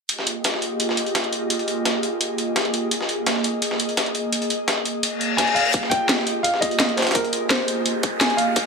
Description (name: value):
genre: liquid drum and bass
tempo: 170 BPM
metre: 4/4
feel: straight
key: F minor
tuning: A4 = 439 Hz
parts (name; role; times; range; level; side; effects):
- airy breathy pad; sustained chords; 0.1-8.7 s; Bb3 to Eb5; -25 LUFS; right 1 dB; chorus
- drum and bass drum kit; drums; 0.1-8.6 s; hi-hat, snare drum; -24 LUFS; equal; none
- dusty soul sampler-style drum kit; drums; 0.1-8.6 s; hi-hat, snare drum; -24 LUFS; left 1 dB; overdrive, high-pass filter on hats, high-pass filter on snare, high-pass filter on room
- reverse cymbal and riser; sound effects; 5.2-8.7 s; none; -26 LUFS; left 5 dB; none
- warm grand piano; melody; 5.4-8.7 s; Bb4 to Ab5; -23 LUFS; equal; ping-pong delay
- electronic kick drum; drums; 5.7-8.6 s; none; -24 LUFS; equal; high-pass filter on kick
room: moderate lush hall reverb, RT60 2.1 s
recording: high-pass filter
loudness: -19 LUFS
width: side -4 dB against mid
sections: 0.1-5.7 A section; 5.7-8.7 B section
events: reverse cymbal 5.2-5.7; build-up 5.7-8.7; riser 5.7-8.7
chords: 0.1 Fm11; 2.9 Bb7sus4; 5.7 Fm11